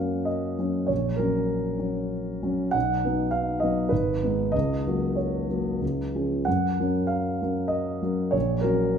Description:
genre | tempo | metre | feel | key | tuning
classical, romantic character piece for solo piano | 90-106 BPM | 3/4 | rubato | F# major | A4 = 439 Hz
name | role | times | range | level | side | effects
dark concert grand piano | solo | 0.0-9.0 s | G#1 to F#5 | -23 LUFS | equal | none
room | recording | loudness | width
moderate recital hall reverb, RT60 1.6 s | minimal, uncompressed stereo recording | -23 LUFS | side -7 dB against mid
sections
0.0-9.0 A section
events
none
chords
0.0 F#; 0.9 F#/A#; 2.7 B; 3.9 G#m; 4.5 F#/C#; 5.8 C#; 6.5 F#; 8.3 F#/A#

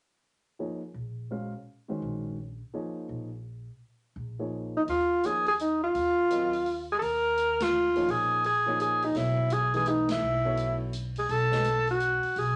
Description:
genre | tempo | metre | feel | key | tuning
modal jazz | 168 BPM | 3/4 | swing 64% on 8ths | unclear | A4 = 441 Hz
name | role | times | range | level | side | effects
dark concert grand piano | accompaniment | 0.6-11.6 s | Eb3 to F5 | -38 LUFS | equal | none
upright bass | bass | 0.9-12.6 s | Bb1 to Eb2 | -37 LUFS | equal | none
breathy alto saxophone | melody | 4.8-12.6 s | Eb4 to Bb4 | -28 LUFS | equal | none
swinging big-band drum kit | drums | 4.9-12.5 s | hi-hat, kick drum, ride cymbal, snare drum | -45 LUFS | equal | none
room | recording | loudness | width
wet studio ambience, RT60 0.5 s | nothing above 10.6 kHz | -28 LUFS | mono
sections
0.6-4.9 A section; 4.9-12.6 B section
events
band accent 7.5, 10.0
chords
0.6 Eb13sus4; 4.9 Eb9sus4; 9.2 B13sus4

